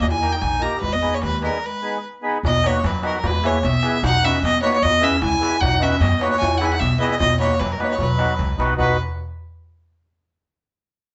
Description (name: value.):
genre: balkan folk, Balkan wedding band.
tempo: 151 BPM.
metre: 2/4.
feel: swing 53% on 16ths.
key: B major.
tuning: A4 = 440 Hz.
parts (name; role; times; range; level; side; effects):
rich fiddle; melody; 0.0-9.0 s; A#4 to A#5; -24 LUFS; equal; none.
mellow clarinet; second line; 0.0-9.0 s; F#3 to G4; -29 LUFS; equal; none.
upright bass; bass; 0.0-9.0 s; G#1 to F#2; -26 LUFS; equal; none.
darbuka; percussion; 0.0-9.0 s; none; -28 LUFS; equal; none.
mellow accordion; accompaniment; 0.2-9.0 s; A#3 to B4; -27 LUFS; equal; none.
room: wet studio reverb, RT60 0.7 s.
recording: band playing live in one room, nothing above 8.0 kHz.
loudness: -20 LUFS.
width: mono.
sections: 0.0-2.4 A section; 2.4-8.8 B section.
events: break 1.6-2.4.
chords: 0.0 D#; 0.8 G#m; 2.4 B; 3.2 E; 4.0 B; 4.8 E; 5.6 B; 6.4 E; 7.2 B.